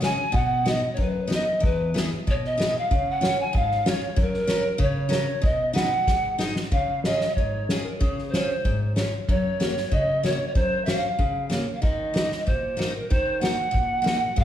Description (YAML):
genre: alpine folk, alpine dance band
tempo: 94 BPM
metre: 2/4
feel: straight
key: B major, Db major from 6.7 s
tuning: A4 = 441 Hz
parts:
  - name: mellow pan flute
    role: melody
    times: 0.0-14.4 s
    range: Ab4 to G#5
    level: -25 LUFS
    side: right 1 dB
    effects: none
  - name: picked steel-string acoustic guitar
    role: accompaniment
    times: 0.0-14.4 s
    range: E2 to B#4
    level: -28 LUFS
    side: left 1 dB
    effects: none
  - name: soft-mallet drum kit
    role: drums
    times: 0.0-14.4 s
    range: kick drum, snare drum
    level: -26 LUFS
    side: equal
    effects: none
room: wet recital hall reverb, RT60 1.4 s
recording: heard from further back in the room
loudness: -21 LUFS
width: side -11 dB against mid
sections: 0.0-6.7 A section; 6.7-14.4 B section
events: drum fill 6.1-6.7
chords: 0.3 B; 1.6 E; 2.9 C#; 4.2 F#; 5.4 B; 6.1 G#7; 6.7 Db; 9.3 Gb; 11.8 Ebm